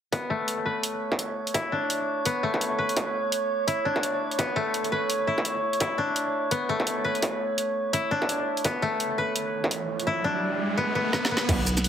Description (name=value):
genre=half-time drum and bass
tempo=169 BPM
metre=4/4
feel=swing 59% on 16ths, half-time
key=B minor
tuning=A4 = 440 Hz
part: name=koto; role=arpeggios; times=0.1-11.9 s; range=A3 to B4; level=-27 LUFS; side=left 2 dB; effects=low-pass filter, dub echo
part: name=drum and bass drum kit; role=drums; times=0.1-11.9 s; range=crash cymbal, hi-hat, shaker, snare drum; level=-28 LUFS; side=right 1 dB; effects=overdrive
part: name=electronic kick drum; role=drums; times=0.1-11.6 s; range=none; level=-30 LUFS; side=right 1 dB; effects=distortion, high-pass filter on kick, high-pass filter on room
part: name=metallic inharmonic drone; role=texture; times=0.6-10.1 s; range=C#5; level=-30 LUFS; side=right 2 dB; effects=chorus, built-in reverb
part: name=riser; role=sound effects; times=9.4-11.5 s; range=none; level=-31 LUFS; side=right 2 dB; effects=none
part: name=deep dark ambient pad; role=sustained chords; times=11.5-11.9 s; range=none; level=barely audible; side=none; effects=none
part: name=long sustained 808-style bass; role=bass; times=11.5-11.9 s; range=B1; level=-25 LUFS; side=equal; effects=tube saturation
room=moderate digital room reverb, RT60 1.1 s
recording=heavily compressed radio sound, multiband compression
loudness=-24 LUFS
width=side -9 dB against mid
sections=0.1-11.5 A section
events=riser 9.4-11.5; drum fill 11.1-11.5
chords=0.1 Bmadd9